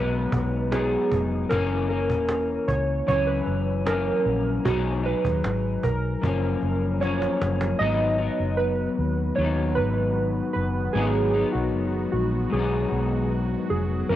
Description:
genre	indie pop, bedroom pop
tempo	76 BPM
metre	4/4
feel	straight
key	G# minor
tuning	A4 = 441 Hz
part	warbly lo-fi synth keys	melody	0.0-14.2 s	F#4 to D#5	-27 LUFS	right 2 dB	lush chorus, tape echo
part	electric guitar through a small old amp	accompaniment	0.0-14.2 s	F#2 to D#4	-27 LUFS	left 5 dB	analog chorus, warbly pitch drift, cassette tape
part	vintage muted fingered electric bass	bass	0.0-14.2 s	E1 to D#2	-27 LUFS	right 1 dB	none
part	cajon	drums	0.1-7.8 s	none	-31 LUFS	right 1 dB	cassette tape
part	phased analog pad	sustained chords	8.4-14.2 s	D#3 to F#4	-34 LUFS	right 2 dB	phaser, chorus, cassette tape
room	light reverb, digital ambience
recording	home recording on cassette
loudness	-22 LUFS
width	side -12 dB against mid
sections	0.0-7.8 A section; 7.8-14.2 B section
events	drum fill 7.0-7.8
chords	0.0 G#m7; 1.5 F#7; 4.7 B6; 6.2 F#maj7; 7.8 G#m7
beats	0.72 | 1.51 2.29 3.08 3.87 | 4.66 5.44 6.23 7.02 | 7.80 8.59 9.38 10.16 | 10.95 11.74 12.53 13.31 | 14.10

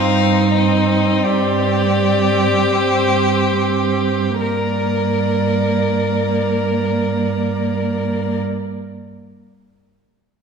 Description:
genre	classical, slow romantic movement for string quartet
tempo	34-46 BPM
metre	4/4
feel	rubato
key	G minor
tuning	A4 = 442 Hz
part	rich violin	melody	0.0-8.4 s	C5 to F5	-23 LUFS	left 7 dB	none
part	rich violin	second line	0.0-8.4 s	Eb4 to Bb4	-20 LUFS	left 2 dB	none
part	rich viola	accompaniment	0.0-8.4 s	Bb3 to C4	-22 LUFS	right 1 dB	none
part	rich cello	bass	0.0-8.4 s	G2	-20 LUFS	right 7 dB	none
room	wet concert hall reverb, RT60 1.9 s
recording	none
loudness	-15 LUFS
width	side -6 dB against mid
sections	0.0-4.4 A section; 4.4-10.4 B section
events	slowing down 0.0-4.4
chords	0.0 Cm/G; 4.4 Gm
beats	1.24 2.73 | 4.42 6.02 7.61

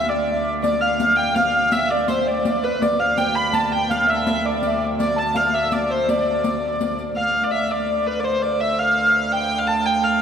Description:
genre	medieval dance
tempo	110 BPM (dotted quarters)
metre	6/8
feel	straight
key	D dorian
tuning	A4 = 443 Hz
part	dark hurdy-gurdy	melody	0.0-10.2 s	B4 to B5	-20 LUFS	left 1 dB	none
part	celesta	second line	0.0-10.2 s	B4 to B5	-24 LUFS	right 2 dB	none
part	rich viola da gamba	drone	0.0-10.2 s	D2	-28 LUFS	right 2 dB	none
part	riq	percussion	0.6-7.1 s	none	-27 LUFS	left 2 dB	none
room	wet cathedral reverb, RT60 5.8 s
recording	recorded in a church or concert hall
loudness	-18 LUFS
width	side -8 dB against mid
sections	0.0-7.2 A section; 7.2-10.2 B section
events	none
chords	none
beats	0.09 | 0.64 1.18 | 1.72 2.27 | 2.81 3.35 | 3.90 4.44 | 4.99 5.53 | 6.07 6.61 | 7.16 7.70 | 8.24 8.78 | 9.32 9.87

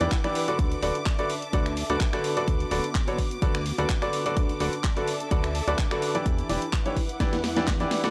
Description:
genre	piano house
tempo	127 BPM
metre	4/4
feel	swing 54% on 16ths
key	D major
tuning	A4 = 439 Hz
part	bright studio violin section	sustained chords	0.0-8.1 s	D6	-41 LUFS	equal	sidechain pumping
part	bright baby grand piano	riff	0.0-8.1 s	D3 to D5	-30 LUFS	equal	sidechain pumping
part	fat analog bass	bass	0.0-7.9 s	D1 to E2	-33 LUFS	equal	sidechain pumping
part	house drum kit	drums	0.0-8.1 s	finger snaps, handclaps, hi-hat, snare drum	-36 LUFS	equal	none
part	dark studio string section	texture	0.0-8.1 s	B3 to F#5	-39 LUFS	equal	sidechain pumping
part	electronic kick drum	drums	0.1-7.8 s	none	-28 LUFS	equal	none
room	digital ambience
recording	dry, gritty hardware recording, cassette tape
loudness	-26 LUFS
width	mono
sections	0.0-8.1 A section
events	drum fill 7.2-8.1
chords	0.0 Em7; 0.6 D6; 2.2 Bm7/D; 4.4 D6; 6.3 Em7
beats	0.12 | 0.59 1.06 1.53 2.00 | 2.48 2.95 3.42 3.90 | 4.37 4.84 5.31 5.79 | 6.26 6.73 7.20 7.67

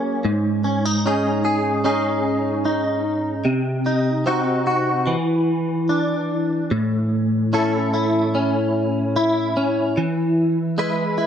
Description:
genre	pop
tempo	74 BPM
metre	4/4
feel	straight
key	unclear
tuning	A4 = 440 Hz
part	direct-recorded clean electric guitar	solo	0.0-11.3 s	Ab2 to B4	-18 LUFS	equal	ensemble chorus
room	light reverb, digital ambience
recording	none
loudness	-18 LUFS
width	side -8 dB against mid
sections	0.0-6.7 A section; 6.7-11.3 B section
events	none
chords	0.2 Absus4; 3.4 Cdim; 5.1 Dsus2; 6.7 A; 10.0 E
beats	| 0.24 1.04 1.84 2.64 | 3.44 4.25 5.06 5.88 | 6.71 7.52 8.33 9.15 | 9.95 10.76

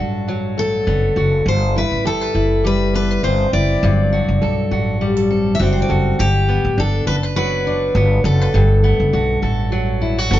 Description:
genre	acoustic pop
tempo	102 BPM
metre	4/4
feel	swing 55% on 16ths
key	G major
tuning	A4 = 440 Hz
part	picked steel-string acoustic guitar	melody	0.0-10.4 s	F#4 to E5	-20 LUFS	left 1 dB	none
part	fingerpicked steel-string acoustic guitar	accompaniment	0.0-10.4 s	G2 to B4	-21 LUFS	left 2 dB	none
part	flamenco guitar	arpeggios	0.0-10.4 s	F#3 to A4	-28 LUFS	right 7 dB	none
part	upright bass	bass	0.0-10.4 s	F#1 to B1	-18 LUFS	equal	none
room	light reverb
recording	band playing live in one room, nothing above 7.6 kHz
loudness	-14 LUFS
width	side -13 dB against mid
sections	0.0-6.2 A section; 6.2-10.4 B section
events	none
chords	0.0 Gmaj7; 1.5 Cmaj7; 3.8 D7; 6.2 Gmaj7; 8.5 Bm7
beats	0.28 0.87 | 1.47 2.06 2.65 3.24 | 3.83 4.42 5.01 5.60 | 6.19 6.78 7.37 7.95 | 8.54 9.13 9.72 10.31

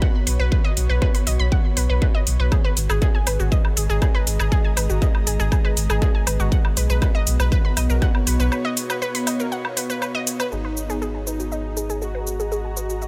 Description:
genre	melodic techno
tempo	120 BPM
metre	4/4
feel	straight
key	G# dorian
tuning	A4 = 441 Hz
part	unison pluck	arpeggios	0.0-13.1 s	F#4 to B5	-30 LUFS	equal	sidechain pumping, tape echo
part	electronic kick drum	drums	0.0-8.1 s	none	-21 LUFS	equal	distortion
part	airy breathy pad	texture	0.0-13.1 s	B3 to A#5	-34 LUFS	equal	chorus, sidechain pumping
part	round analog bass	bass	0.3-13.1 s	G#1 to B1	-24 LUFS	equal	sidechain pumping
part	electronic hi-hat, shaker and woodblock	drums	0.3-13.1 s	none	-29 LUFS	equal	none
part	deep dark ambient pad	sustained chords	3.9-13.1 s	G#3 to F#5	-35 LUFS	equal	chorus, built-in reverb, sidechain pumping
part	soft supersaw	melody	10.5-13.1 s	D#4 to F#4	-33 LUFS	equal	sidechain pumping, low-pass filter
room	little or no reverb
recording	none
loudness	-21 LUFS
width	mono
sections	0.0-10.5 A section; 10.5-13.1 B section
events	break 8.5-10.5; filter sweep on synth arpeggio sound 10.5-13.1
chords	0.0 B5; 2.5 G#m; 6.5 B; 10.5 G#m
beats	0.02 | 0.52 1.02 1.52 2.02 | 2.52 3.02 3.52 4.02 | 4.52 5.02 5.52 6.02 | 6.52 7.02 7.52 8.02 | 8.52 9.02 9.52 10.02 | 10.52 11.02 11.52 12.02 | 12.52 13.02

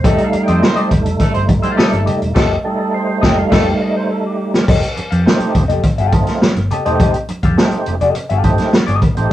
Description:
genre	funk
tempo	104 BPM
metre	4/4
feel	straight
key	unclear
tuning	A4 = 440 Hz
part	clear horn section	second line	0.0-3.7 s	A3 to C5	-23 LUFS	right 1 dB	none
part	semi-hollow electric guitar	accompaniment	0.0-9.3 s	G4 to F5	-20 LUFS	left 5 dB	wah
part	percussive tonewheel organ	stabs	0.0-9.3 s	G3 to G5	-18 LUFS	right 2 dB	overdrive, chorus vibrato, slow rotary speaker
part	vintage muted fingered electric bass	bass	0.0-9.3 s	E1 to F2	-19 LUFS	equal	none
part	vintage drum kit	drums	0.0-9.3 s	crash cymbal, hi-hat, kick drum, snare drum	-14 LUFS	equal	none
part	congas	percussion	0.3-9.2 s	none	-27 LUFS	right 3 dB	none
room	moderate studio reverb, RT60 0.5 s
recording	rough rehearsal-room recording, cassette tape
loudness	-12 LUFS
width	side -13 dB against mid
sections	0.0-4.7 A section; 4.7-9.3 B section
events	tonewheel organ solo 0.0-4.7; band accent 2.4-4.7; drum fill 4.1-4.7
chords	0.0 F9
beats	| 0.04 0.62 1.20 1.78 | 2.36 2.94 3.52 4.10 | 4.68 5.26 5.84 6.42 | 7.00 7.58 8.16 8.74 | 9.31

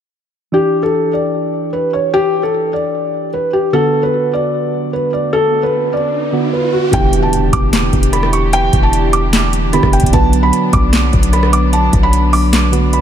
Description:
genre	hip hop, trap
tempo	150 BPM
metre	4/4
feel	half-time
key	unclear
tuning	A4 = 438 Hz
part	felt-muted upright piano	melody	0.5-13.0 s	F#4 to D6	-16 LUFS	equal	ping-pong delay
part	soft electric-piano-like synth keys	accompaniment	0.5-13.0 s	D3 to B4	-19 LUFS	right 4 dB	chorus
part	riser and impact	sound effects	4.9-8.5 s	none	-24 LUFS	equal	none
part	dark studio string section	sustained chords	6.9-13.0 s	E3 to G4	-19 LUFS	left 1 dB	none
part	warm 808-style bass	bass	6.9-13.0 s	E1 to B1	-15 LUFS	equal	none
part	booming analog drum machine	drums	6.9-13.0 s	handclaps, hi-hat, kick drum, rim click, snare drum	-16 LUFS	equal	overdrive
room	moderate church reverb, RT60 3.1 s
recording	dreamy mix soaked in reverb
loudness	-11 LUFS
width	side -9 dB against mid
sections	0.5-6.9 A section; 6.9-13.0 B section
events	riser 4.9-6.9; impact 6.9-8.5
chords	0.5 Em7; 3.7 Bm; 6.9 Em7; 10.1 Bm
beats	| 0.53 0.93 1.33 1.73 | 2.13 2.53 2.93 3.33 | 3.73 4.13 4.53 4.93 | 5.33 5.73 6.13 6.53 | 6.93 7.33 7.73 8.13 | 8.53 8.93 9.33 9.73 | 10.13 10.53 10.93 11.33 | 11.73 12.13 12.53 12.93

